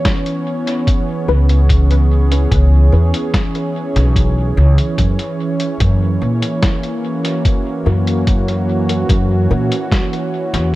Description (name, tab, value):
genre	ambient dub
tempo	73 BPM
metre	4/4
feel	straight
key	C# dorian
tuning	A4 = 441 Hz
part	warm analog pad	sustained chords	0.0-10.8 s	E3 to C#5	-19 LUFS	right 1 dB	chorus
part	electronic kick drum	drums	0.1-10.1 s	none	-16 LUFS	equal	none
part	lo-fi sampler-style drum kit	drums	0.1-10.7 s	hi-hat, snare drum	-23 LUFS	left 1 dB	dub echo
part	filtered dub chord stab	stabs	1.3-9.8 s	C#4 to B4	-25 LUFS	left 4 dB	chorus, vintage 12-bit sampler grit, dub echo
part	upright bass	bass	1.3-10.8 s	B1 to A#2	-13 LUFS	equal	none
room	digital ambience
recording	none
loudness	-13 LUFS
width	side -17 dB against mid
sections	0.0-10.8 A section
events	none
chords	0.0 C#m7; 5.0 F#7